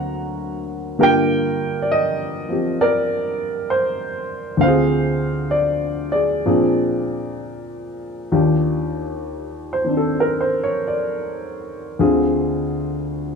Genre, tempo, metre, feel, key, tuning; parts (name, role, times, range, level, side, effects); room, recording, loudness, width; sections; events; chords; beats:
jazz ballad; 66 BPM; 4/4; swing 66% on 8ths; Eb major from 8.3 s; A4 = 439 Hz
warm upright piano; solo; 0.0-13.4 s; D2 to A#5; -18 LUFS; equal
wet studio reverb, RT60 0.7 s; dark, warm production; -18 LUFS; side -5 dB against mid
0.0-8.3 A section; 8.3-13.4 B section
0.0 Daug7; 1.0 Gm7; 4.6 Dm7b5; 6.4 Bb7; 8.3 Ebmaj7; 12.0 Dm7b5
0.05 | 0.96 1.87 2.78 3.69 | 4.59 5.51 6.43 7.37 | 8.31 9.23 10.14 11.06 | 11.97 12.88